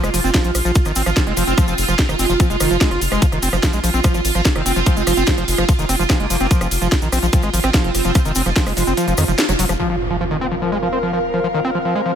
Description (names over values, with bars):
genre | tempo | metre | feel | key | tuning
psychedelic trance | 146 BPM | 4/4 | straight | F minor | A4 = 439 Hz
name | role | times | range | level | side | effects
metallic wobble bass | second line | 0.0-8.9 s | Ab3 to C4 | -33 LUFS | right 2 dB | none
evolving wavetable pad | sustained chords | 0.0-12.2 s | F4 to Bb4 | -22 LUFS | right 4 dB | ensemble chorus, built-in reverb, sidechain pumping
screaming distorted acid line | riff | 0.0-12.1 s | Eb3 to F4 | -21 LUFS | left 1 dB | distortion, chorus, auto-pan, sidechain pumping, dub echo
round analog bass | bass | 0.0-9.8 s | F1 to F2 | -21 LUFS | equal | none
drum and bass drum kit | drums | 0.0-9.9 s | crash cymbal, hi-hat, ride cymbal, rim click, snare drum | -23 LUFS | equal | low-pass filter on snare, low-pass filter on hats, low-pass filter on cymbals
cabasa | percussion | 0.0-9.8 s | none | -28 LUFS | left 5 dB | none
electronic kick drum | drums | 0.3-8.6 s | none | -15 LUFS | equal | none
impact | sound effects | 9.8-11.4 s | none | -28 LUFS | equal | none
airy breathy pad | texture | 9.8-12.2 s | C4 to F5 | -24 LUFS | left 3 dB | chorus, sidechain pumping
room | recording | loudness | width
light reverb, digital ambience | none | -15 LUFS | side -9 dB against mid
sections
0.0-9.8 A section; 9.8-12.2 B section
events
drop 0.0-9.8; kick drops out 9.0-9.8; band accent 9.4; impact 9.8-11.4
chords
0.0 F5